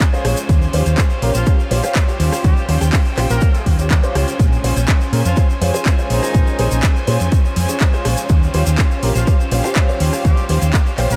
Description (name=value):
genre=filtered disco house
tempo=123 BPM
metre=4/4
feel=straight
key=unclear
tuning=A4 = 441 Hz
part: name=rich studio violin section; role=sustained chords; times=0.0-11.2 s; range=Db4 to Ab5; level=-29 LUFS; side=equal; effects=sidechain pumping
part: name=electric guitar at the edge of break-up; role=riff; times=0.0-11.2 s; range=G3 to C5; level=-31 LUFS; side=equal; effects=subtle chorus, sidechain pumping
part: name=electronic kick drum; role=drums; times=0.0-10.8 s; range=none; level=-16 LUFS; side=equal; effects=overdrive
part: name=house drum kit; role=drums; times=0.0-11.2 s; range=handclaps, hi-hat, rim click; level=-27 LUFS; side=equal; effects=overdrive, sidechain pumping on hats
part: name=tube shaker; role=percussion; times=0.0-11.2 s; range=none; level=-35 LUFS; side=equal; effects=sidechain pumping on perc
part: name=warm grand piano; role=accompaniment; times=0.1-11.0 s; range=Db4 to Db5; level=-26 LUFS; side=equal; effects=phaser, sidechain pumping
part: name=hollow-body short-scale fingered electric bass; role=bass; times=0.2-11.2 s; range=Bb1 to Bb2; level=-20 LUFS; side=equal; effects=sidechain pumping
part: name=bright horn section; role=melody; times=1.3-11.2 s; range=Eb3 to Bb4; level=-34 LUFS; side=equal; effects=none
room=light reverb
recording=none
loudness=-16 LUFS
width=mono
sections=0.0-11.2 A section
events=none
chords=0.5 Eb13; 4.4 Bbm9; 8.3 Eb13